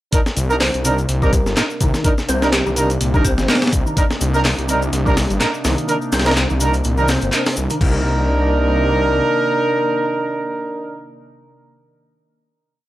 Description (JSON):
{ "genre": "breakbeat, breaks", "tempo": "125 BPM", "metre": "4/4", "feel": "swing 56% on 16ths", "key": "C minor", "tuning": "A4 = 441 Hz", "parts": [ { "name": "warbly tape-like pad", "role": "sustained chords", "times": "0.1-11.2 s", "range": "C3 to D5", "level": "-28 LUFS", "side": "equal", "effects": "chorus, built-in reverb, sidechain pumping" }, { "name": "clear brass ensemble", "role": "stabs", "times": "0.1-11.2 s", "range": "D4 to Bb4", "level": "-19 LUFS", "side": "right 2 dB", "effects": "analog delay" }, { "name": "breakbeat sampler-style drum kit", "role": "drums", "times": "0.1-7.9 s", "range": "crash cymbal, hi-hat, kick drum, snare drum", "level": "-19 LUFS", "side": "equal", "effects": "none" }, { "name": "electronic shaker and handclaps", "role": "drums", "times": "0.1-7.8 s", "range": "none", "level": "-24 LUFS", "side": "left 1 dB", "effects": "none" }, { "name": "detuned saw bass", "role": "bass", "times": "0.4-9.2 s", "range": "G1 to C2", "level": "-19 LUFS", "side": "equal", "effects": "tube saturation" }, { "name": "kalimba", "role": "melody", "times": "0.6-2.7 s", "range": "G4 to C5", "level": "-27 LUFS", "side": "equal", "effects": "telephone sound, analog delay" }, { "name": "percussive tonewheel organ", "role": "riff", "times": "0.6-8.0 s", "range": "Bb2 to C4", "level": "-24 LUFS", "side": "equal", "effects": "overdrive, chorus vibrato, fast rotary speaker, analog delay" } ], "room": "light reverb", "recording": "dry, gritty hardware recording", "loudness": "-15 LUFS", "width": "side -15 dB against mid", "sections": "0.1-7.8 drop; 7.8-11.6 final chord", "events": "drop 0.1-7.8", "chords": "0.1 Cm9" }